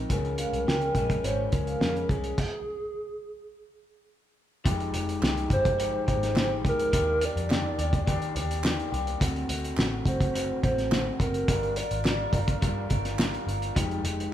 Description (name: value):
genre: indie pop, bedroom pop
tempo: 105 BPM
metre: 4/4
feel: straight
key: unclear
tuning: A4 = 443 Hz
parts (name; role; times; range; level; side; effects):
- electric guitar through a small old amp; accompaniment; 0.0-14.3 s; Db3 to Bb4; -32 LUFS; left 2 dB; warbly pitch drift
- vintage muted picked electric bass; bass; 0.0-14.3 s; F1 to Eb3; -32 LUFS; equal; none
- hollow clarinet-like synth lead; melody; 0.1-12.9 s; Ab4 to D5; -30 LUFS; right 1 dB; chorus
- cloth-damped thuddy drum kit; drums; 0.1-14.3 s; crash cymbal, hi-hat, kick drum, snare drum; -28 LUFS; equal; none
- vibraphone with medium hard mallets; second line; 0.4-1.9 s; Db5 to G5; -35 LUFS; right 4 dB; none
- group handclap; percussion; 5.2-13.3 s; none; -42 LUFS; right 3 dB; none
room: moderate recital hall reverb, RT60 1.7 s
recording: recorded in a church or concert hall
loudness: -25 LUFS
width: side -11 dB against mid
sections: 0.0-4.7 A section; 4.7-14.3 B section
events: stop 2.4-4.7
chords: 0.1 Db; 4.7 Fm9; 6.9 Ebmaj7; 9.2 D7; 11.5 Gm7; 13.8 Fm9